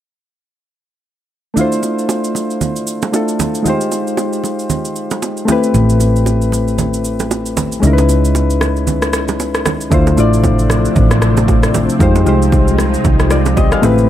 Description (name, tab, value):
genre	amapiano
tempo	115 BPM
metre	4/4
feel	swing 58% on 16ths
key	D dorian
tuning	A4 = 443 Hz
part	soft electric-piano-like synth keys	accompaniment	1.5-14.1 s	G3 to F5	-15 LUFS	left 2 dB	chorus
part	deep house drum kit	drums	1.6-14.1 s	kick drum, rim click, shaker	-18 LUFS	equal	none
part	congas and bongos	percussion	1.6-14.0 s	none	-22 LUFS	right 6 dB	none
part	hollow-body short-scale fingered electric bass	bass	5.7-14.1 s	A1 to F2	-15 LUFS	equal	none
part	soft string machine	sustained chords	10.4-14.1 s	C3 to Eb4	-19 LUFS	equal	ensemble chorus
room	light reverb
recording	dark, warm production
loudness	-12 LUFS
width	side -11 dB against mid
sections	1.6-9.9 A section; 9.9-14.1 B section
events	break 8.9-9.9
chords	1.6 Dm7; 3.7 Fm7; 5.5 Am7; 7.8 C#m7; 9.9 Dm7; 12.0 Fm7